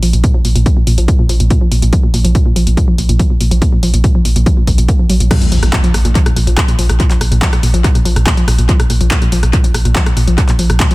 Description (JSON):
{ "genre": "driving peak-time techno", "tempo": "142 BPM", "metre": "4/4", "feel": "straight", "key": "unclear", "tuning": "A4 = 440 Hz", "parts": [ { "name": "woody wave-folded pluck", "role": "riff", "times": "0.0-10.9 s", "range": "Bb2 to Bb3", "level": "-17 LUFS", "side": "equal", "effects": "chorus, overdrive, cassette tape, sidechain pumping, tape echo" }, { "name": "saturated sub bass", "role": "bass", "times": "0.0-10.8 s", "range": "Bb1", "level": "-12 LUFS", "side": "equal", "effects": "sidechain pumping, low-pass filter" }, { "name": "punchy analog drum machine", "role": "drums", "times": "0.0-10.9 s", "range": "crash cymbal, handclaps, hi-hat, rim click", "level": "-19 LUFS", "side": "left 1 dB", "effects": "tape echo" }, { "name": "electronic kick drum", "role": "drums", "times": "0.2-10.9 s", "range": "none", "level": "-13 LUFS", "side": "equal", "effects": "overdrive" }, { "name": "impact", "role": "sound effects", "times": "5.3-7.0 s", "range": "none", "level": "-22 LUFS", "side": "equal", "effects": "none" } ], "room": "digital ambience", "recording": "echo-heavy mix", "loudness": "-9 LUFS", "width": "side -20 dB against mid", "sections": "0.0-5.3 A section; 5.3-10.9 B section", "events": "drop 5.3-10.9; impact 5.3-7.0", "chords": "0.0 Bb5", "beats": "| 0.24 0.66 1.08 1.50 | 1.93 2.35 2.77 3.19 | 3.62 4.04 4.46 4.88 | 5.31 5.73 6.15 6.58 | 7.00 7.42 7.84 8.27 | 8.69 9.11 9.53 9.96 | 10.38 10.80" }